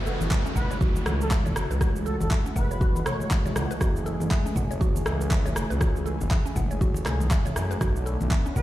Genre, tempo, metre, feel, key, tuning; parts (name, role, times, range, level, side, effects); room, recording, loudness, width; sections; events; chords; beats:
afro house; 120 BPM; 4/4; swing 59% on 16ths; F# minor; A4 = 440 Hz
warm analog pad; sustained chords; 0.0-8.6 s; E3 to G#4; -33 LUFS; equal; chorus, sidechain pumping
smooth gliding synth bass; bass; 0.0-8.6 s; F#1 to F#2; -28 LUFS; equal; sidechain pumping
downlifter; sound effects; 0.0-3.8 s; -36 LUFS; right 1 dB
mallet-like synth pluck; arpeggios; 0.1-8.6 s; C#4 to F#5; -36 LUFS; equal; chorus, sidechain pumping, ping-pong delay
electronic cabasa, handclaps and rim click; drums; 0.1-8.6 s; -33 LUFS; equal
congas; percussion; 0.2-8.6 s; -33 LUFS; left 1 dB
electronic kick drum; drums; 0.3-8.6 s; -24 LUFS; equal
expressive portamento lead; melody; 0.6-3.3, 8.6 s; A4 to C#5; -36 LUFS; equal; ensemble chorus, ping-pong delay
light reverb; played on a big sound system in a bare room, large studio reverb; -23 LUFS; side -15 dB against mid
0.0-8.6 A section
0.0 F#m9; 7.8 Bm9
0.31 0.81 1.31 | 1.81 2.31 2.81 3.31 | 3.81 4.31 4.81 5.31 | 5.81 6.31 6.81 7.31 | 7.81 8.31